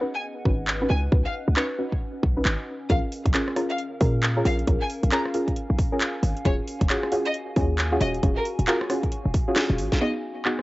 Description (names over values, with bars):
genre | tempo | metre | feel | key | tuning
UK garage, two-step garage | 135 BPM | 4/4 | swing 61% on 16ths | unclear | A4 = 439 Hz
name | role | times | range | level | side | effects
deep mellow chord stab | stabs | 0.0-10.6 s | B3 to B4 | -28 LUFS | equal | chorus, cassette tape, analog delay
warbly tape-like pad | texture | 0.0-10.6 s | B3 to G#5 | -35 LUFS | left 1 dB | chorus, built-in reverb, sidechain pumping, cassette tape
rich symphonic violin section | melody | 0.1-10.1 s | A#4 to A#5 | -31 LUFS | left 1 dB | cassette tape, analog delay
short 808-style bass | bass | 0.5-10.0 s | D#1 to A#2 | -24 LUFS | equal | none
electronic kick drum | drums | 0.5-9.5 s | none | -24 LUFS | equal | none
house drum kit | drums | 0.7-10.6 s | handclaps, hi-hat, rim click, snare drum | -27 LUFS | equal | low-pass filter on snare, low-pass filter on hats, low-pass filter on room
room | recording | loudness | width
light reverb | home recording on cassette, nothing above 7.8 kHz | -22 LUFS | side -19 dB against mid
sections
0.0-10.0 A section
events
filter sweep on synth stab 0.0-10.0; drum fill 9.6-10.0; band accent 9.9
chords
0.0 C#9sus4; 2.7 A#m7; 6.5 D#m11; 10.0 G#m7